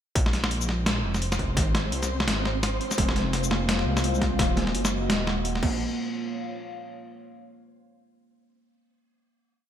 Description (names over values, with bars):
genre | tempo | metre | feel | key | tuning
half-time drum and bass | 170 BPM | 4/4 | swing 58% on 16ths, half-time | Bb minor | A4 = 442 Hz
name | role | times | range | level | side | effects
dark detuned saw bass | bass | 0.2-5.8 s | Eb1 to C2 | -28 LUFS | equal | tube saturation
boom bap sampler-style drum kit | drums | 0.2-5.7 s | crash cymbal, hi-hat, shaker, snare drum | -27 LUFS | left 1 dB | overdrive, gated reverb
electronic kick drum | drums | 0.2-5.7 s | none | -26 LUFS | equal | distortion
flickering grainy texture | texture | 0.9-5.8 s | C4 to C5 | -36 LUFS | right 1 dB | built-in reverb, ensemble chorus
dark analog pad | sustained chords | 3.4-7.2 s | Ab3 to F5 | -33 LUFS | left 1 dB | chorus, sidechain pumping
kalimba | arpeggios | 3.0-5.8 s | Ab3 to Bb3 | -32 LUFS | right 2 dB | ping-pong delay
room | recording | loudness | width
light reverb | bright 1980s-style digital production | -23 LUFS | side -10 dB against mid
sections
0.2-5.8 drop; 5.8-7.2 final chord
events
drop 0.2-5.8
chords
0.2 Bb5; 1.6 Ab; 3.0 Fm; 4.4 Ebm; 5.6 Bb5; 5.8 Bbm